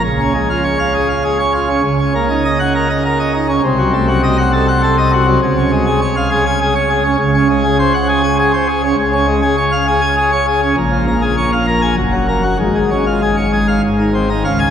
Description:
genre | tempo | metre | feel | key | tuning
classical, organ toccata | 100 BPM | 3/4 | straight | Db major | A4 = 440 Hz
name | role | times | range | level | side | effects
pipe organ, plenum | solo | 0.0-14.7 s | Gb1 to Ab5 | -12 LUFS | equal | none
room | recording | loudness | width
wet cathedral reverb, RT60 5.0 s | recorded in a church or concert hall | -12 LUFS | side -8 dB against mid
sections
0.0-14.5 A section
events
none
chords
0.0 Db; 1.8 Ebm7/Db; 3.6 Cdim7; 5.4 Db; 7.2 Ab7/Db; 9.0 Db; 10.8 Bbm7; 12.0 Gb; 12.6 Db/Ab; 13.8 Ab

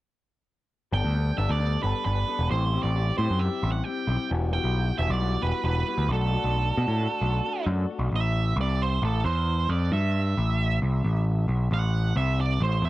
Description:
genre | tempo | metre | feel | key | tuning
rock | 133 BPM | 4/4 | straight | A dorian | A4 = 440 Hz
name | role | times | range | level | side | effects
octave-fuzz lead guitar | melody | 0.9-12.9 s | A4 to G5 | -30 LUFS | right 5 dB | distortion, cassette tape
electric guitar through a small old amp | riff | 0.9-12.9 s | A2 to A4 | -33 LUFS | left 6 dB | cassette tape
growling picked electric bass | bass | 0.9-12.9 s | E1 to B2 | -24 LUFS | equal | overdrive
room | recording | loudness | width
little or no reverb | home recording on cassette | -23 LUFS | side -16 dB against mid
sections
0.9-8.1 A section; 8.1-12.9 B section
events
none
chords
0.9 Gadd9; 2.5 Am7; 4.3 Emadd9; 6.1 Bm7; 8.1 Am

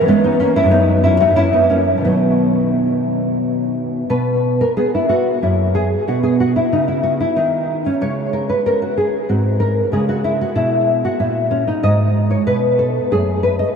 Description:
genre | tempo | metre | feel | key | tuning
classical, baroque-style dance for nylon-string guitar | 93 BPM | 3/4 | rubato | B major | A4 = 440 Hz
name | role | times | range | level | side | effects
nylon-string guitar | solo | 0.0-13.7 s | F#2 to D#5 | -14 LUFS | equal | ensemble chorus, diffuse ambient delay
room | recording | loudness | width
wet huge ambient reverb, RT60 6.8 s | dreamy mix soaked in reverb | -14 LUFS | side -6 dB against mid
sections
0.0-4.1 A section; 4.1-13.8 B section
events
none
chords
0.1 C#m7/E; 0.7 B/F#; 1.4 F#; 2.0 B; 4.1 N.C.; 5.4 F#7; 6.1 B; 8.0 C#5; 9.3 G#7; 9.9 C#5; 11.8 G#madd11; 13.1 F#m69

